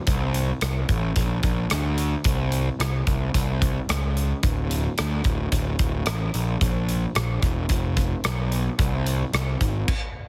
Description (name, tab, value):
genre	quiet-loud alternative rock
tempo	110 BPM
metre	4/4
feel	straight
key	D minor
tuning	A4 = 440 Hz
part	fuzz picked electric bass	bass	0.1-9.8 s	D1 to D2	-26 LUFS	equal	overdrive
part	big rock drum kit	drums	0.1-10.0 s	crash cymbal, hi-hat, kick drum, rim click	-28 LUFS	equal	none
room	little or no reverb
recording	heavily compressed radio sound, multiband compression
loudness	-24 LUFS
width	mono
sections	0.0-10.3 A section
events	stop 9.9-10.3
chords	none